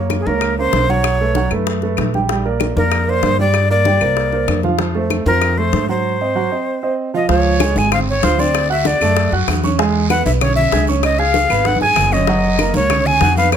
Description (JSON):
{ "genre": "Afro-Cuban jazz", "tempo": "192 BPM", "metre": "4/4", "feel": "straight", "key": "Db major from 7.3 s", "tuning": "A4 = 440 Hz", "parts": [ { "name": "warm grand piano", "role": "accompaniment", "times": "0.0-13.6 s", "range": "F3 to G#6", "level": "-20 LUFS", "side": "right 6 dB", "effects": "none" }, { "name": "upright bass", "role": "bass", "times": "0.0-13.6 s", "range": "Gb1 to Ab2", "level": "-19 LUFS", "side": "left 1 dB", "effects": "none" }, { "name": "bongos", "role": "percussion", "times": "0.1-13.6 s", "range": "none", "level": "-25 LUFS", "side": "left 10 dB", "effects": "none" }, { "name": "claves", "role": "percussion", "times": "0.1-5.6, 7.6-13.6 s", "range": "none", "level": "-25 LUFS", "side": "left 7 dB", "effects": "none" }, { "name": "congas", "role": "percussion", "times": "0.1-13.6 s", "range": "none", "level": "-24 LUFS", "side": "left 1 dB", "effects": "none" }, { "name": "breathy bright jazz flute", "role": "melody", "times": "0.2-13.6 s", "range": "Ab4 to Ab5", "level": "-17 LUFS", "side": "left 1 dB", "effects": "none" }, { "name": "guiro", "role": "percussion", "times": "7.3-13.6 s", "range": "none", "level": "-29 LUFS", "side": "right 4 dB", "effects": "none" } ], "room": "little or no reverb", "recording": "close, detailed microphones", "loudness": "-13 LUFS", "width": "side -8 dB against mid", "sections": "0.0-7.3 A section; 7.3-13.6 B section", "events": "break 6.0-7.3; drum fill 11.7-12.3", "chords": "0.0 Gb; 1.0 Bsus2; 2.3 Bb6; 3.5 Gm; 4.2 C9sus4; 4.8 F; 6.0 Ab7; 7.3 Dbmaj7; 8.5 D9; 9.8 E6; 11.0 Db7; 12.3 Gbmaj13", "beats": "0.10 0.42 0.73 | 1.04 1.36 1.67 1.98 | 2.29 2.61 2.92 3.23 | 3.54 3.86 4.17 4.48 | 4.80 5.11 5.42 5.73 | 6.05 6.36 6.67 6.98 | 7.29 7.61 7.92 8.23 | 8.54 8.86 9.17 9.48 | 9.79 10.10 10.41 10.72 | 11.04 11.35 11.66 11.97 | 12.28 12.59 12.90 13.22 | 13.53" }